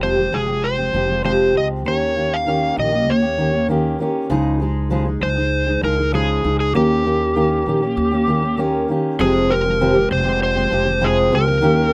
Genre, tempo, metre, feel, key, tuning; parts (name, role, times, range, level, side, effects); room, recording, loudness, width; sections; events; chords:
acoustic pop; 98 BPM; 4/4; straight; F minor; A4 = 440 Hz
overdriven slide guitar; melody; 0.0-11.9 s; G4 to F5; -22 LUFS; equal
fingerpicked steel-string acoustic guitar; accompaniment; 0.0-11.9 s; F2 to Ab4; -21 LUFS; equal
upright bass; bass; 0.0-11.9 s; F1 to Eb2; -26 LUFS; equal
light reverb; -18 LUFS; mono
0.0-9.2 A section; 9.2-11.9 B section
0.0 Fmadd9; 1.9 Eb7; 4.3 Dbadd9; 6.7 Eb7; 9.2 Fmadd9